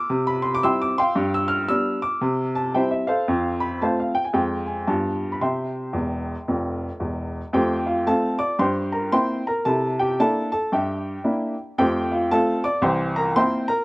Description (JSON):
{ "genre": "jazz, stride piano", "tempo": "113 BPM", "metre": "4/4", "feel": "swing 62% on 8ths", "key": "C major, F major from 7.5 s", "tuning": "A4 = 437 Hz", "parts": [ { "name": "clear upright piano", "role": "solo", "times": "0.0-13.8 s", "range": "E1 to F6", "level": "-20 LUFS", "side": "equal", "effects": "slapback echo" } ], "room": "light reverb", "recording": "recorded outdoors, with no room sound", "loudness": "-20 LUFS", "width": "side -26 dB against mid", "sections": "0.0-7.5 A section; 7.5-13.8 B section", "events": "upright piano fill 5.9-7.5", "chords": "0.1 C; 1.2 G7; 2.2 C; 3.3 F; 4.3 Fm; 4.9 G7; 5.4 C; 7.5 F; 8.6 C7/G; 9.7 C9; 11.8 F; 12.8 C7", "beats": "0.09 0.62 | 1.15 1.69 2.22 2.75 | 3.28 3.81 4.34 4.87 | 5.40 5.94 6.47 7.00 | 7.53 8.06 8.59 9.12 | 9.65 10.18 10.71 11.24 | 11.77 12.30 12.84 13.37" }